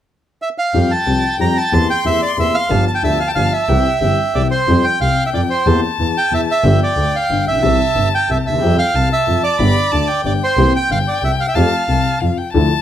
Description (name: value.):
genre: tango.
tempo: 183 BPM.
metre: 3/4.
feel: rubato.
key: F major.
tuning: A4 = 440 Hz.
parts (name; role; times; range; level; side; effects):
bandoneon; melody; 0.4-12.2 s; C5 to Bb5; -17 LUFS; right 3 dB; none.
warm violin; second line; 0.7-12.8 s; F5 to C6; -22 LUFS; left 5 dB; none.
dark upright piano; accompaniment; 0.7-12.7 s; G1 to G4; -19 LUFS; left 5 dB; none.
clear double bass; bass; 0.7-12.7 s; G1 to F2; -18 LUFS; right 2 dB; none.
room: light reverb.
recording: none.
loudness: -13 LUFS.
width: side -10 dB against mid.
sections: 0.7-4.7 A section; 4.7-12.5 B section.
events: none.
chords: 0.0 N.C.; 0.7 Fsus2; 1.7 C7/E; 2.7 G7; 3.7 C; 4.7 Fsus2; 5.7 C7/E; 6.6 G7; 7.6 C; 8.6 Fsus2; 9.6 G; 10.6 C7; 11.6 Fadd9.